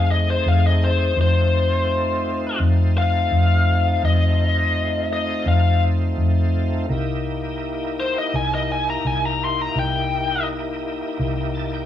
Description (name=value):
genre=straight-eighth soul blues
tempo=84 BPM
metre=4/4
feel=straight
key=F mixolydian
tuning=A4 = 440 Hz
part: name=biting lead guitar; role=melody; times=0.0-10.5 s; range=C5 to C6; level=-22 LUFS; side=left 4 dB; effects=overdrive
part: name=bright tonewheel organ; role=accompaniment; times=0.0-11.9 s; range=A3 to A5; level=-26 LUFS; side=equal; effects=slow rotary speaker, overdrive, chorus vibrato
part: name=vintage muted fingered electric bass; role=bass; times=0.0-11.8 s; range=C2 to F2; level=-20 LUFS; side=equal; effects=none
room=moderate large studio reverb, RT60 0.9 s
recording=band playing live in one room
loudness=-18 LUFS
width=side -11 dB against mid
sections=0.0-11.9 A section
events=lead electric guitar solo 0.0-11.9; tonewheel organ fill 11.2-11.9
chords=0.0 F7#9; 6.9 C7#9